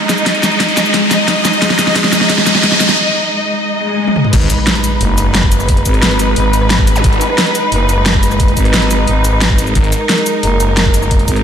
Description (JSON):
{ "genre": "dark technical drum and bass", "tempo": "177 BPM", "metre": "4/4", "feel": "straight", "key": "G# minor", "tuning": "A4 = 439 Hz", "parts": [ { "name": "muted studio string section", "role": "sustained chords", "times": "0.0-11.4 s", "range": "G#3 to D#5", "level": "-16 LUFS", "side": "equal", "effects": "sidechain pumping" }, { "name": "riser, swell, impact and zap", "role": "sound effects", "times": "0.0-7.0 s", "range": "none", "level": "-17 LUFS", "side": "equal", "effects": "none" }, { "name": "wide unison pluck", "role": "arpeggios", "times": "0.1-2.7 s", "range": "G#3 to D#4", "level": "-20 LUFS", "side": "left 1 dB", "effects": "sidechain pumping, tape echo" }, { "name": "dubstep drum kit", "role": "drums", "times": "0.1-11.4 s", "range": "cabasa, crash cymbal, hi-hat, rim click, snare drum, toms", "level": "-15 LUFS", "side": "equal", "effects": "studio reverb" }, { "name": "electronic kick drum", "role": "drums", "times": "0.3-11.3 s", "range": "none", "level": "-14 LUFS", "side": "equal", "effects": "overdrive, high-pass filter on kick, studio reverb, high-pass filter on room" }, { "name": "phased detuned saw bass", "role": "bass", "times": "4.3-4.5, 7.0-7.2, 9.8-9.9 s", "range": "G#1", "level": "-15 LUFS", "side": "equal", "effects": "phaser, overdrive, sidechain pumping" }, { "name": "growling FM bass", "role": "bass", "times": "5.0-11.4 s", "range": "F#1 to G#1", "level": "-14 LUFS", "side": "equal", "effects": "none" } ], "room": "moderate lush hall reverb, RT60 1.9 s", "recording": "dreamy mix soaked in reverb", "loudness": "-10 LUFS", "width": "side -8 dB against mid", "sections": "0.0-4.3 A section; 4.3-11.4 B section", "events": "build-up 0.0-4.3; drum fill 0.0-3.0, 4.1; riser 0.0-3.0; filter sweep on synth arpeggio sound 0.0-4.3; break 3.0-4.3; swell 3.7-4.3; drop 4.3-11.4; impact 4.3-5.7", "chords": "0.0 G#5; 4.3 G#m" }